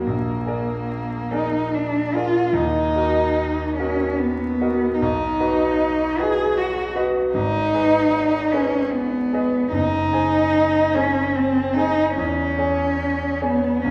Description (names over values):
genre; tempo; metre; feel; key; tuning
classical, romantic duo for cello and grand piano; 68-78 BPM; 3/4; rubato; G# minor from 7.3 s; A4 = 444 Hz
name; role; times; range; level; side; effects
warm cello; melody; 0.0-13.9 s; Bb3 to Ab4; -22 LUFS; equal; none
bright grand piano; accompaniment; 0.0-13.9 s; F#1 to G#5; -26 LUFS; equal; none
room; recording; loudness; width
wet recital hall reverb, RT60 1.7 s; heard from further back in the room, vinyl crackle; -21 LUFS; mono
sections
0.0-13.9 A section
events
none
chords
0.1 Bb7; 2.5 Ebm; 5.0 B; 7.3 G#m; 9.7 G#7/F#; 12.2 C#m/E